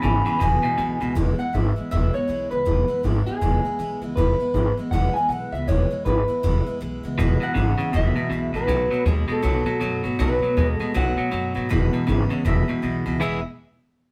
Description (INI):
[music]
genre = rockabilly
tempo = 159 BPM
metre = 4/4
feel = swing 61% on 8ths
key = E major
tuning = A4 = 439 Hz
[part]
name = electric guitar through a small old amp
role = melody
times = 0.0-13.4 s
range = G#4 to B5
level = -28 LUFS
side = equal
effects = none
[part]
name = picked steel-string acoustic guitar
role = accompaniment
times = 0.0-13.4 s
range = E2 to F#4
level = -32 LUFS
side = equal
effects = none
[part]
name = clean electric guitar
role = riff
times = 0.0-1.1, 7.2-13.4 s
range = E2 to G#4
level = -28 LUFS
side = equal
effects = none
[part]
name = upright bass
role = bass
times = 0.0-13.4 s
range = E1 to G#2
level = -25 LUFS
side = equal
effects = none
[sound]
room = moderate studio reverb, RT60 0.7 s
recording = band playing live in one room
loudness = -22 LUFS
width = mono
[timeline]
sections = 0.0-1.2 A section; 1.2-13.2 B section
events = clean electric guitar solo 0.0-1.2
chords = 0.0 E; 8.7 B7; 11.7 E